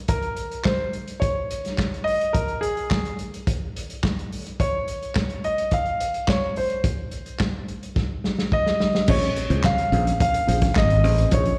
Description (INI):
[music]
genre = disco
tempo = 107 BPM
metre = 4/4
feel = straight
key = Bb minor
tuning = A4 = 439 Hz
[part]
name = warm concert grand piano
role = melody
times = 0.1-11.6 s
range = Ab4 to F5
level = -27 LUFS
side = equal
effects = slapback echo
[part]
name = vintage drum kit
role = drums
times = 0.1-11.6 s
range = crash cymbal, handclaps, hi-hat, kick drum, snare drum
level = -27 LUFS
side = equal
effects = none
[part]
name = mellow electric guitar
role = accompaniment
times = 9.1-11.5 s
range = Db4 to C5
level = -32 LUFS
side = equal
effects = tube saturation, plate reverb, slapback echo
[part]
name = modern bright fingered electric bass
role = bass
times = 9.1-11.5 s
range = Ab1 to Db2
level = -22 LUFS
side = equal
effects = none
[sound]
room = light reverb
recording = live gig heard through the venue's PA, recital hall reverb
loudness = -23 LUFS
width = mono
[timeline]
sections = 0.0-9.1 A section; 9.1-11.6 B section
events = drum fill 8.0-9.1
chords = 0.0 N.C.; 9.1 Bbm9